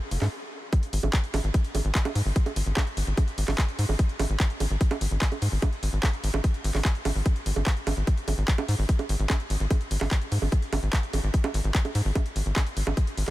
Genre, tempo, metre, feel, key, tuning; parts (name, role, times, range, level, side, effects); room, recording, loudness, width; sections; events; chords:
psychedelic trance; 147 BPM; 4/4; straight; A4 = 440 Hz
tight sequencer bass; bass; 0.1-13.3 s; F#1 to G#2; -25 LUFS; equal
techno drum kit; drums; 0.1-13.3 s; bongos, handclaps, hi-hat; -30 LUFS; right 2 dB; overdrive, small room ambience
electronic kick drum; drums; 0.7-13.1 s; -24 LUFS; equal; overdrive, small room ambience
digital ambience; -24 LUFS; side -17 dB against mid
0.7-13.3 A section
stop 0.3-0.7; drop 0.7-13.3